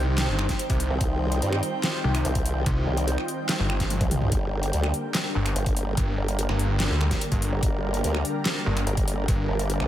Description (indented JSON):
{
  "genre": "heavy wobble dubstep",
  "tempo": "145 BPM",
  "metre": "4/4",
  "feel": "half-time",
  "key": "G minor",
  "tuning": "A4 = 440 Hz",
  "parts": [
    { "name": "supersaw chords", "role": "sustained chords", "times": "0.0-9.9 s", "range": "D3 to C5", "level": "-32 LUFS", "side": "right 1 dB", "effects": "sidechain pumping, low-pass filter" },
    { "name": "snarling distorted saw bass", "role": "bass", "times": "0.0-9.5 s", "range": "G1 to D2", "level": "-25 LUFS", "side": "equal", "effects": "distortion, overdrive" },
    { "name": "airy breathy pad", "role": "texture", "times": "0.0-9.9 s", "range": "D4 to G5", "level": "-32 LUFS", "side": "equal", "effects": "chorus, phaser, sidechain pumping" },
    { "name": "dubstep drum kit", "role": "drums", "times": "0.2-9.9 s", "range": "finger snaps, handclaps, hi-hat, snare drum, toms", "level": "-29 LUFS", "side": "equal", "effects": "overdrive" },
    { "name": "electronic kick drum", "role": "drums", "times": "0.5-9.4 s", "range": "none", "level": "-26 LUFS", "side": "equal", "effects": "overdrive" },
    { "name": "formant-sweep wobble bass", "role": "bass", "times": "0.9-9.9 s", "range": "G1 to G2", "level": "-26 LUFS", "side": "equal", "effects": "chorus, overdrive" }
  ],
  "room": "light reverb",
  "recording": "none",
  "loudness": "-22 LUFS",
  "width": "side -12 dB against mid",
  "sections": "0.0-9.9 A section",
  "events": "drum fill 3.9-4.3",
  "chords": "0.0 Cm; 4.3 Gm"
}